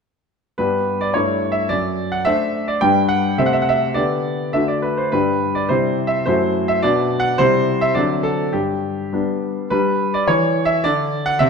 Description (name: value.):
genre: classical-period piano sonatina.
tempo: 106 BPM.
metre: 2/4.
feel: rubato.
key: G major.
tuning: A4 = 440 Hz.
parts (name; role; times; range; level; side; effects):
clear concert grand piano; solo; 0.6-11.5 s; F#2 to G5; -16 LUFS; equal; none.
room: wet recital hall reverb, RT60 1.7 s.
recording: dark, warm production.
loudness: -16 LUFS.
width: side -5 dB against mid.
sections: 0.6-9.7 A section; 9.7-11.5 B section.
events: none.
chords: 0.6 G; 1.2 A7/G; 1.7 D7/F#; 2.8 G; 3.4 Am/C; 4.0 G/D; 4.5 D; 5.1 G; 5.7 C; 6.3 F#m7b5; 6.8 Bm; 7.4 C; 8.0 D7; 8.5 G; 10.3 N.C.; 10.8 Cadd9.